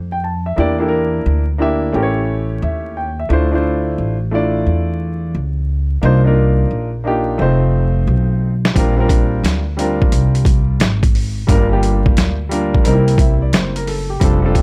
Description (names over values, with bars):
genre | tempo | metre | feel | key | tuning
hip hop, jazz-hop | 88 BPM | 4/4 | swing 65% on 16ths | C mixolydian | A4 = 439 Hz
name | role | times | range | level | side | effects
upright bass | bass | 0.0-14.6 s | F1 to F2 | -19 LUFS | equal | none
dark concert grand piano | accompaniment | 0.1-14.6 s | G3 to A5 | -21 LUFS | equal | none
boom bap sampler-style drum kit | drums | 8.7-14.6 s | hi-hat, kick drum, snare drum | -18 LUFS | equal | none
room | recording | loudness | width
studio reverb | dry, gritty hardware recording, vinyl crackle | -16 LUFS | mono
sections
0.0-14.6 A section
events
drum fill 7.4-8.8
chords
0.0 C6 (rootless); 0.6 Em7b5; 1.9 A7; 3.3 Dm9; 6.0 Cm11; 7.4 F7; 8.8 Bb69; 11.5 Gm7; 12.9 C7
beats
| 0.58 1.26 1.94 2.62 | 3.31 3.99 4.67 5.35 | 6.03 6.71 7.40 8.08 | 8.76 9.44 10.12 10.81 | 11.49 12.17 12.85 13.53 | 14.21